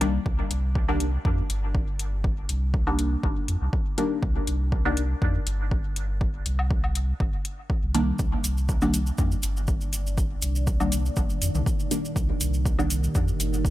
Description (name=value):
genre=dub techno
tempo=121 BPM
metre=4/4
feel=swing 53% on 16ths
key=C minor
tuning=A4 = 438 Hz
part: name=filtered dub chord stab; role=stabs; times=0.0-13.0 s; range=Eb3 to D4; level=-30 LUFS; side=left 1 dB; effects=phaser, sidechain pumping, dub echo
part: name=warm sub bass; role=bass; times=0.0-13.7 s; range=G1 to F2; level=-26 LUFS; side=equal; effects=sidechain pumping
part: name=electronic hi-hat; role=drums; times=0.0-13.5 s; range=none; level=-32 LUFS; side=left 2 dB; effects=overdrive
part: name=electronic kick drum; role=drums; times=0.3-13.7 s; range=none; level=-26 LUFS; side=equal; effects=overdrive
part: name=electronic woodblock and toms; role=percussion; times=0.9-12.9 s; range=none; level=-38 LUFS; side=left 2 dB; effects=sidechain pumping on perc, sidechain pumping on toms, dub echo
part: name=deep dark ambient pad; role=sustained chords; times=9.9-13.7 s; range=Eb3 to D5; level=-33 LUFS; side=right 2 dB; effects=chorus, built-in reverb, sidechain pumping
part: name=cabasa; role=percussion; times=8.2-13.7 s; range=none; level=-34 LUFS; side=right 2 dB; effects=none
room=little or no reverb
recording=none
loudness=-23 LUFS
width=side -15 dB against mid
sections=0.0-13.7 A section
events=none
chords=0.0 Cm9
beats=| 0.26 0.76 1.25 1.75 | 2.24 2.74 3.23 3.73 | 4.23 4.72 5.22 5.71 | 6.21 6.71 7.20 7.70 | 8.19 8.69 9.19 9.68 | 10.18 10.67 11.17 11.66 | 12.16 12.66 13.15 13.65